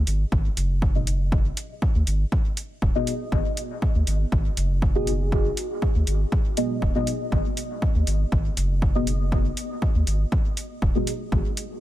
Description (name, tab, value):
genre	dub techno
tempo	120 BPM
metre	4/4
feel	straight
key	G# minor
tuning	A4 = 435 Hz
part	round analog bass	bass	0.0-11.4 s	D#1 to D#2	-23 LUFS	equal	sidechain pumping
part	electronic hi-hat	drums	0.1-11.7 s	none	-33 LUFS	equal	none
part	electronic kick drum	drums	0.3-11.4 s	none	-24 LUFS	equal	none
part	deep mellow chord stab	stabs	1.0-11.1 s	B3 to D#5	-29 LUFS	left 1 dB	chorus, phaser, sidechain pumping, dub echo
room	light reverb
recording	none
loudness	-21 LUFS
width	side -14 dB against mid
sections	0.0-11.8 A section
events	filter sweep on synth stab 0.0-11.8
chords	0.0 G#m7